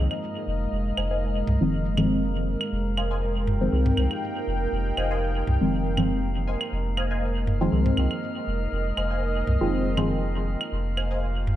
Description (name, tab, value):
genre	dub techno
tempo	120 BPM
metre	4/4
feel	swing 54% on 16ths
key	F minor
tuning	A4 = 439 Hz
part	dark analog pad	sustained chords	0.0-11.6 s	Ab3 to G5	-32 LUFS	right 1 dB	chorus, vintage 12-bit sampler grit
part	deep mellow chord stab	stabs	0.0-10.2 s	Eb3 to C4	-27 LUFS	equal	chorus, phaser, dub echo
part	pure sine sub bass	bass	0.0-11.6 s	F1 to C2	-26 LUFS	equal	none
part	drifting glass-harmonics texture	texture	0.0-11.6 s	Bb3 to Bb4	-35 LUFS	right 1 dB	chorus, built-in reverb
part	electronic claves and toms	percussion	0.1-11.6 s	none	-31 LUFS	right 1 dB	dub echo
part	filtered dub chord stab	riff	1.0-11.2 s	C5 to Ab5	-35 LUFS	left 1 dB	phaser, ensemble chorus, dub echo
room	light reverb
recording	dark, warm production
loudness	-23 LUFS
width	side -13 dB against mid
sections	0.0-11.6 A section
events	none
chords	0.0 Fm7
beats	0.22 | 0.72 1.22 1.72 2.22 | 2.72 3.22 3.72 4.22 | 4.72 5.22 5.72 6.22 | 6.72 7.22 7.72 8.22 | 8.72 9.22 9.72 10.22 | 10.72 11.22